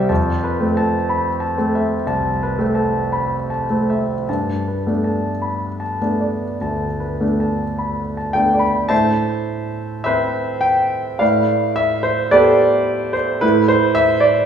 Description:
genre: classical, impressionist solo piano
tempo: 50-62 BPM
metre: 4/4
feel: rubato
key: unclear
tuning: A4 = 435 Hz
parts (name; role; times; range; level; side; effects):
- clear concert grand piano; solo; 0.0-14.5 s; C2 to B5; -16 LUFS; equal; none
room: wet recital hall reverb, RT60 1.6 s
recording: heard from further back in the room, small room ambience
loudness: -16 LUFS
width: side -8 dB against mid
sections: 0.0-8.9 A section; 8.9-14.5 B section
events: none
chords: 0.1 Fmaj7#11; 4.3 Gadd9; 8.9 Amadd9; 11.2 Gadd9/A; 13.4 Amadd9

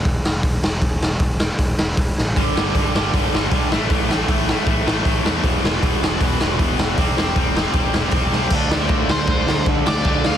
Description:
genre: punk rock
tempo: 156 BPM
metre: 4/4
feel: straight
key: unclear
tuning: A4 = 440 Hz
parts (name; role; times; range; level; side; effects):
- growling picked electric bass; bass; 0.1-10.4 s; E1 to E2; -25 LUFS; equal; overdrive
- raw garage drum kit; drums; 0.1-10.3 s; crash cymbal, hi-hat, kick drum, snare drum; -19 LUFS; equal; none
- overdriven electric guitar; riff; 2.4-10.4 s; E2 to D4; -21 LUFS; equal; none
- nasal lead guitar with a parked wah; melody; 9.1-10.4 s; C5 to F5; -23 LUFS; left 1 dB; overdrive
room: little or no reverb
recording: dense, heavily limited modern master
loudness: -16 LUFS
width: side -10 dB against mid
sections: 0.0-8.5 A section; 8.5-10.4 B section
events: drum fill 2.2, 8.3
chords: 0.0 N.C.; 2.4 G; 3.7 A5; 5.4 E5; 7.0 C/E; 8.5 D5

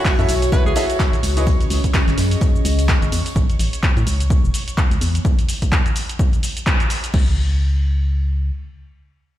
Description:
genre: piano house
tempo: 127 BPM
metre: 4/4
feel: swing 58% on 16ths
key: unclear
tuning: A4 = 441 Hz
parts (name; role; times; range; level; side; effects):
- dark studio violin section; sustained chords; 0.0-5.3 s; C#5 to C#6; -35 LUFS; right 4 dB; sidechain pumping
- bright upright piano; riff; 0.0-1.5 s; E4 to E5; -24 LUFS; right 1 dB; sidechain pumping, ping-pong delay
- tambourine; percussion; 0.0-3.3 s; none; -37 LUFS; left 1 dB; none
- warbly tape-like pad; texture; 0.0-3.4 s; C#4 to D#6; -26 LUFS; left 2 dB; chorus, built-in reverb, sidechain pumping
- edgy alto saxophone; melody; 0.1-0.8 s; F#4 to B4; -29 LUFS; equal; ping-pong delay
- electronic kick drum; drums; 0.1-7.2 s; none; -18 LUFS; equal; none
- punchy analog drum machine; drums; 0.1-7.2 s; cabasa, crash cymbal, handclaps, hi-hat; -25 LUFS; equal; none
- vintage brush drum kit; drums; 0.1-3.3 s; hi-hat, snare drum; -33 LUFS; right 2 dB; sidechain pumping on hats, high-pass filter on hats, high-pass filter on snare, high-pass filter on room
- organ-like FM bass; bass; 0.2-8.5 s; E1 to A2; -18 LUFS; equal; sidechain pumping
room: studio reverb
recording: played on a big sound system in a bare room, large studio reverb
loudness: -16 LUFS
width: side -13 dB against mid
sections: 0.0-7.1 A section; 7.1-9.4 B section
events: drop 0.0-7.1; band accent 6.7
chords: 0.0 F#m7; 1.2 C#5; 3.4 A; 5.2 N.C.

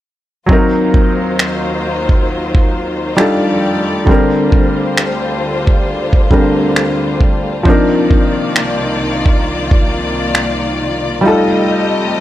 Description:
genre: contemporary R&B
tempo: 67 BPM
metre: 4/4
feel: swing 58% on 16ths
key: Bb major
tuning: A4 = 440 Hz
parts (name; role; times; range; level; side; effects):
- warm concert grand piano; accompaniment; 0.5-12.2 s; D3 to Bb4; -15 LUFS; equal; none
- warm studio string section; sustained chords; 0.5-12.2 s; C2 to Eb5; -18 LUFS; left 2 dB; none
- dusty soul sampler-style drum kit; drums; 0.5-10.6 s; finger snaps, kick drum; -12 LUFS; right 1 dB; none
room: little or no reverb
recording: dry, gritty hardware recording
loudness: -11 LUFS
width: side -14 dB against mid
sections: 0.5-12.2 A section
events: none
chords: 0.5 Ebm6; 3.2 F13; 4.1 Bb69/D; 7.7 Cm11; 11.2 F9

